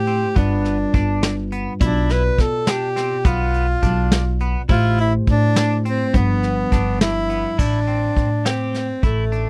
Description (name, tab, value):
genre	progressive instrumental, band music in an uneven meter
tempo	208 BPM (eighths)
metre	5/8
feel	straight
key	A minor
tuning	A4 = 440 Hz
part	warm tenor saxophone	melody	0.0-9.5 s	A3 to B4	-24 LUFS	equal	none
part	bell-like tine electric piano	accompaniment	0.0-7.6 s	B2 to D5	-28 LUFS	equal	none
part	upright bass	bass	0.0-9.5 s	G1 to B2	-23 LUFS	equal	none
part	clean electric guitar	arpeggios	0.1-9.5 s	B3 to G4	-32 LUFS	equal	subtle chorus
part	vintage brush drum kit	drums	0.1-9.5 s	crash cymbal, hi-hat, kick drum, snare drum	-20 LUFS	equal	none
room	little or no reverb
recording	dry, close 1970s-style studio recording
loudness	-19 LUFS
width	mono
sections	0.0-7.6 A section; 7.6-9.5 B section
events	none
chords	0.4 G7; 1.8 Bdim; 4.7 Am7; 6.1 G7; 7.6 Am7